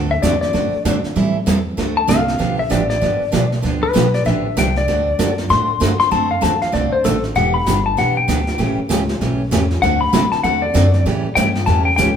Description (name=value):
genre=country, western swing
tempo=194 BPM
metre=4/4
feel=swing 61% on 8ths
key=D mixolydian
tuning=A4 = 441 Hz
part: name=picked steel-string acoustic guitar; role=accompaniment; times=0.0-12.1 s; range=C#3 to A4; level=-20 LUFS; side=right 4 dB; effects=none
part: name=upright bass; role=bass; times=0.0-12.2 s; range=E1 to A2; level=-20 LUFS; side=equal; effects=none
part: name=clean lap steel guitar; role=second line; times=0.1-12.2 s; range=A4 to C6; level=-18 LUFS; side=left 4 dB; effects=none
part: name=jazz brush drum kit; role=drums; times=0.2-12.2 s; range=brushed snare drum, hi-hat, kick drum, snare drum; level=-24 LUFS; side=right 1 dB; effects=none
room=wet large studio reverb, RT60 1.3 s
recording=band playing live in one room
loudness=-14 LUFS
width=side -8 dB against mid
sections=0.0-12.2 A section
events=electric slide guitar solo 0.0-12.2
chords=0.0 D9; 1.2 Am7; 1.8 D7; 2.4 G9; 4.9 D7; 7.4 Em7; 8.6 A9; 9.8 D9; 11.1 A7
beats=0.23 0.54 0.85 | 1.16 1.47 1.78 2.09 | 2.40 2.71 3.02 3.33 | 3.64 3.95 4.26 4.57 | 4.88 5.19 5.50 5.81 | 6.12 6.42 6.73 7.04 | 7.35 7.66 7.97 8.28 | 8.59 8.90 9.21 9.51 | 9.82 10.13 10.44 10.75 | 11.06 11.37 11.68 11.98